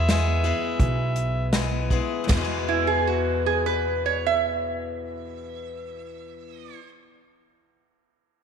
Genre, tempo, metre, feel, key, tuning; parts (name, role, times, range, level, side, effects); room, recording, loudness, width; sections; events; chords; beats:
honky-tonk and classic country; 77-87 BPM; 4/4; straight; E major; A4 = 443 Hz
overdriven harmonica; melody; 0.0-1.5 s; E5; -29 LUFS; right 2 dB
picked swing-style acoustic guitar; accompaniment; 0.0-6.9 s; E2 to G#4; -29 LUFS; left 7 dB
upright bass; bass; 0.0-6.7 s; B1 to E2; -27 LUFS; right 1 dB
natural country drum kit; drums; 0.1-2.5 s; hi-hat, kick drum, ride cymbal, snare drum; -28 LUFS; equal
lap resonator guitar; second line; 2.7-6.9 s; E4 to E5; -25 LUFS; right 8 dB
wet echo chamber reverb, RT60 2.4 s; 1960s-style stereo with parts hard left and right; -21 LUFS; side -7 dB against mid
0.0-2.3 A section; 2.3-5.4 B section
slowing down 0.0-2.3
0.0 E
0.09 0.80 1.53 | 2.29 3.08 3.86 4.64